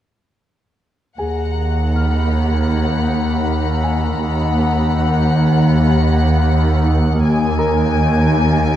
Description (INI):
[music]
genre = cinematic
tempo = 80 BPM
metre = 4/4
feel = straight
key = Eb minor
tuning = A4 = 440 Hz
[part]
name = warm symphonic violin section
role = melody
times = 1.2-8.8 s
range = Gb5 to Ab5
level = -24 LUFS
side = left 4 dB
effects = none
[part]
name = rich chamber double bass section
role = bass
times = 1.2-8.8 s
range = Eb2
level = -19 LUFS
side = right 1 dB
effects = none
[part]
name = warm chamber cello section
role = bass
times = 1.2-8.8 s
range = Eb2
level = -19 LUFS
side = right 1 dB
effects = none
[part]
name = overtone-sweeping drone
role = drone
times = 2.1-8.8 s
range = Eb2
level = -19 LUFS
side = equal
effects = chorus, built-in reverb
[part]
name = rich chamber violin section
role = texture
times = 1.2-8.8 s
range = Db5 to D7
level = -30 LUFS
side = left 7 dB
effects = none
[part]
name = warm concert grand piano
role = texture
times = 1.2-8.8 s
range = Ab4 to F6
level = -27 LUFS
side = left 1 dB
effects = none
[sound]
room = moderate scoring stage reverb, RT60 1.6 s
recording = dark, warm production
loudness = -14 LUFS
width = side -11 dB against mid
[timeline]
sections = 1.2-8.8 A section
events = none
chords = 1.2 Ebm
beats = | 1.19 1.95 2.71 3.47 | 4.22 4.97 5.72 6.47 | 7.21 7.96 8.71